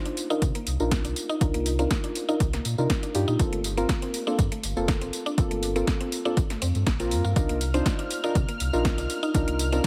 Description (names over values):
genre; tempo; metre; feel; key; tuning
deep house; 121 BPM; 4/4; swing 53% on 16ths; C minor; A4 = 440 Hz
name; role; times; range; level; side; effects
deep mellow chord stab; stabs; 0.0-9.9 s; Bb3 to C5; -31 LUFS; equal; chorus, sidechain pumping, dub echo
mallet-like synth pluck; arpeggios; 0.1-9.8 s; A3 to F4; -36 LUFS; equal; chorus, sidechain pumping, dub echo
deep house drum kit; drums; 0.1-9.9 s; hi-hat, snare drum, tambourine; -35 LUFS; equal; overdrive, small room ambience
sub bass with octave; bass; 0.4-9.8 s; F1 to C3; -31 LUFS; equal; sidechain pumping
electronic kick drum; drums; 0.4-9.9 s; none; -28 LUFS; equal; overdrive, small room ambience
analog string pad; texture; 7.4-9.9 s; F6; -39 LUFS; equal; ensemble chorus, sidechain pumping
room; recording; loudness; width
light reverb; heavily compressed radio sound; -26 LUFS; mono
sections
0.0-9.9 A section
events
none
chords
0.0 Cm11; 3.4 Gm11; 7.4 Cm11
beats
0.42 0.92 | 1.41 1.91 2.40 2.90 | 3.40 3.89 4.39 4.88 | 5.38 5.87 6.37 6.87 | 7.36 7.86 8.35 8.85 | 9.35 9.84